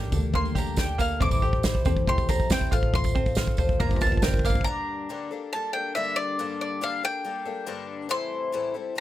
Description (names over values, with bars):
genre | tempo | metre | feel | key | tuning
indie folk with a building arrangement | 139 BPM | 4/4 | straight | G dorian | A4 = 440 Hz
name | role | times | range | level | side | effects
bowl-back mandolin | melody | 0.0-9.0 s | D5 to D6 | -29 LUFS | left 1 dB | none
picked twelve-string acoustic guitar | accompaniment | 0.0-9.0 s | G2 to Bb4 | -31 LUFS | left 4 dB | none
open-back banjo | arpeggios | 0.0-4.7 s | Bb3 to C5 | -33 LUFS | right 9 dB | none
upright bass | bass | 0.0-4.6 s | G1 to E2 | -30 LUFS | equal | none
unplugged drum kit | drums | 0.1-4.7 s | kick drum, snare drum, toms | -24 LUFS | equal | none
tambourine | percussion | 0.1-4.6 s | none | -42 LUFS | right 10 dB | none
room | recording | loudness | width
little or no reverb | none | -23 LUFS | side -14 dB against mid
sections
0.0-4.7 A section; 4.7-9.0 B section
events
build-up 0.0-4.7; drum fill 0.0-4.7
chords
0.0 Gmadd9; 1.2 Am7; 2.7 F/A; 3.8 Gm7; 4.7 Gmadd9; 8.1 Am7